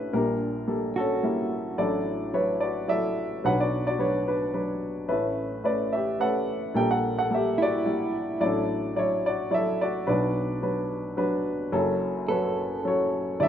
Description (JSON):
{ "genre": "acoustic folk-pop ballad", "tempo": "109 BPM", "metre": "3/4", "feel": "straight", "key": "D major", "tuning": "A4 = 440 Hz", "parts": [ { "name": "warm baby grand piano", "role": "melody", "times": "0.0-13.5 s", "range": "F#1 to G5", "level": "-24 LUFS", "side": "equal", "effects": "none" }, { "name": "mellow electric guitar", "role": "arpeggios", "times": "0.0-2.0, 7.6-8.6, 12.3-13.5 s", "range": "E4 to A4", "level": "-31 LUFS", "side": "right 3 dB", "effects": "tremolo, plate reverb" } ], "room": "wet studio reverb, RT60 0.6 s", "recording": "rough home demo mix", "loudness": "-24 LUFS", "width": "side -9 dB against mid", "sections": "0.0-11.7 A section; 11.7-13.5 B section", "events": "none", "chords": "0.1 Gmadd9/Bb; 3.4 Bm; 5.1 Aadd9; 6.8 Gmadd9/Bb; 10.1 Bm; 11.7 F#m" }